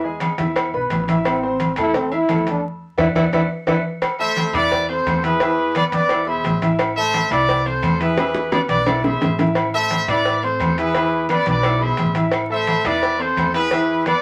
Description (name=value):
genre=latin, salsa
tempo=173 BPM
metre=4/4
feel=straight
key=A harmonic minor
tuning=A4 = 436 Hz
part: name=clear grand piano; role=accompaniment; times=0.0-14.2 s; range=B2 to E6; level=-26 LUFS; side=equal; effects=none
part: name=upright bass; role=bass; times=0.0-14.2 s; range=A1 to A2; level=-31 LUFS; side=equal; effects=none
part: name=congas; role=percussion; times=0.0-14.2 s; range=none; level=-26 LUFS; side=equal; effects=none
part: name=claves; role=percussion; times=0.2-14.2 s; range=none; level=-38 LUFS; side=equal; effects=none
part: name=cowbell and bongos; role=percussion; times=0.2-14.2 s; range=none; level=-27 LUFS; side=equal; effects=none
part: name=timbales and agogo bells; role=percussion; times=0.2-14.2 s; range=none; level=-29 LUFS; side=equal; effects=none
part: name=warm trombone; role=melody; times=1.3-3.8 s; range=C4 to E4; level=-24 LUFS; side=equal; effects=none
part: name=clear trumpet section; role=melody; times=4.2-14.2 s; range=G#4 to E5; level=-22 LUFS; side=equal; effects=none
room=wet studio ambience, RT60 0.5 s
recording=vinyl crackle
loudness=-19 LUFS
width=mono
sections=0.0-4.0 A section; 4.0-14.2 B section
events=band accent 2.6-4.0; drum fill 3.2-4.0, 8.2-9.6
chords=0.0 E; 1.3 Am; 2.6 E5; 4.0 Am